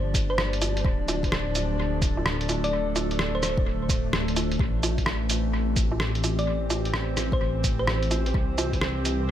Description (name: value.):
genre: future garage.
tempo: 128 BPM.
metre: 4/4.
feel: swing 65% on 16ths.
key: unclear.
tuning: A4 = 440 Hz.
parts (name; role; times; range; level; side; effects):
thumb-piano-like synth pluck; melody; 0.0-3.5, 6.4-8.3 s; C5 to D5; -33 LUFS; left 1 dB; chorus, dub echo.
warbly tape-like pad; sustained chords; 0.0-9.3 s; E3 to D5; -30 LUFS; equal; chorus, built-in reverb, sidechain pumping.
dark detuned saw bass; bass; 0.0-9.3 s; D1 to C2; -28 LUFS; equal; tube saturation, sidechain pumping.
electronic kick drum; drums; 0.1-8.8 s; none; -26 LUFS; equal; none.
lo-fi sampler-style drum kit; drums; 0.1-9.2 s; cabasa, hi-hat, rim click, woodblock; -28 LUFS; right 1 dB; dub echo.
room: light reverb, digital ambience.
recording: echo-heavy mix.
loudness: -23 LUFS.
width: side -11 dB against mid.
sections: 0.0-9.3 A section.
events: none.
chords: 0.0 Gm7; 0.8 Dm; 4.6 Am7; 8.3 C7.